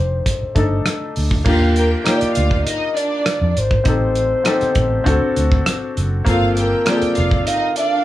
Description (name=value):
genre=lush 1970s-style soul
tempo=100 BPM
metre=4/4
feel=straight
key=unclear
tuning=A4 = 440 Hz
part: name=breathy flugelhorn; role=melody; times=0.0-8.0 s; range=Bb4 to F5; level=-21 LUFS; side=equal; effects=plate reverb
part: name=warm baby grand piano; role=accompaniment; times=0.0-8.0 s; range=A3 to A4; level=-21 LUFS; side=left 2 dB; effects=plate reverb
part: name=vintage muted fingered electric bass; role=bass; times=0.0-7.4 s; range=F1 to F2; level=-19 LUFS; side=equal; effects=none
part: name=warm soul drum kit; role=drums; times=0.3-7.9 s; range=crash cymbal, hi-hat, kick drum, rim click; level=-20 LUFS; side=right 1 dB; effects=none
part: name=warm symphonic string section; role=second line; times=1.5-8.0 s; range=D4 to G5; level=-24 LUFS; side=right 1 dB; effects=plate reverb
room=light reverb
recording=small room ambience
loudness=-15 LUFS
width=side -14 dB against mid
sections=0.0-1.5 A section; 1.5-8.0 B section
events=none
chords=0.0 F13; 1.5 Ebmaj9; 3.9 Am7b5; 5.1 D7; 6.3 Gm11